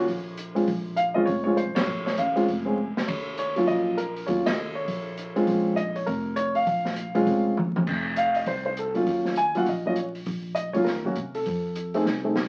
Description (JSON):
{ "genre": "jazz piano trio", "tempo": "200 BPM", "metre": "4/4", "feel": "swing 62% on 8ths", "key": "Bb minor", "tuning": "A4 = 441 Hz", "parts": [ { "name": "warm grand piano", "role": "melody", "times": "0.0-12.3 s", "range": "Gb3 to Ab5", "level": "-26 LUFS", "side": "equal", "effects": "none" }, { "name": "upright bass", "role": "bass", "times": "0.0-12.5 s", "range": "F1 to C3", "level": "-36 LUFS", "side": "equal", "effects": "none" }, { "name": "open jazz drum kit", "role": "drums", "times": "0.1-12.4 s", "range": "crash cymbal, hi-hat, kick drum, ride cymbal, snare drum, toms", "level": "-34 LUFS", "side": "equal", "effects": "none" } ], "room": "moderate studio reverb, RT60 0.6 s", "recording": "very old 78 rpm record, vinyl crackle", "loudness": "-26 LUFS", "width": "mono", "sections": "0.0-12.5 A section", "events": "band accent 1.7, 4.4; drum fill 2.8, 7.6, 12.1-12.5", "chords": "0.0 Eb7(no3) (rootless); 0.7 Bbm7; 3.1 Ebm7; 5.5 Bbm7; 7.9 F5; 9.1 Ebm7; 10.3 Bbm; 10.9 Ebm; 11.5 F", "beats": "0.08 0.38 | 0.68 0.98 1.28 1.58 | 1.88 2.18 2.48 2.78 | 3.08 3.38 3.68 3.98 | 4.28 4.57 4.87 5.17 | 5.47 5.77 6.07 6.37 | 6.67 6.97 7.27 7.57 | 7.87 8.16 8.46 8.76 | 9.06 9.36 9.66 9.96 | 10.26 10.56 10.86 11.16 | 11.46 11.76 12.05 12.35" }